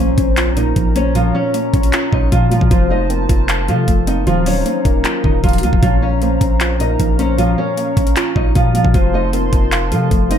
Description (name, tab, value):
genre	hip hop, trap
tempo	154 BPM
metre	4/4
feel	half-time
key	Bb harmonic minor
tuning	A4 = 440 Hz
part	nylon-string guitar	melody	0.0-10.4 s	F3 to Eb5	-19 LUFS	left 1 dB	low-pass filter, diffuse ambient delay
part	soft octave-layered synth lead	second line	0.0-10.4 s	A4 to Db5	-24 LUFS	left 2 dB	chorus, phaser, diffuse ambient delay
part	soft round pluck	accompaniment	0.0-10.4 s	Bb2 to F5	-22 LUFS	right 3 dB	chorus, low-pass filter
part	hollow soft pad	sustained chords	0.0-10.4 s	Gb3 to C6	-27 LUFS	equal	chorus
part	long sustained 808-style bass	bass	0.0-10.4 s	Eb1 to C3	-18 LUFS	equal	none
part	impact	sound effects	0.0-1.2 s	none	-32 LUFS	equal	none
part	trap drum kit	drums	0.2-10.4 s	handclaps, hi-hat, kick drum	-16 LUFS	equal	none
room	moderate plate reverb, RT60 1.3 s, digital ambience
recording	dreamy mix soaked in reverb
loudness	-13 LUFS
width	side -9 dB against mid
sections	0.0-10.4 A section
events	impact 0.0-1.2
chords	0.0 Bbm; 2.7 F; 4.3 Ebmadd9; 5.8 Bbm; 8.9 F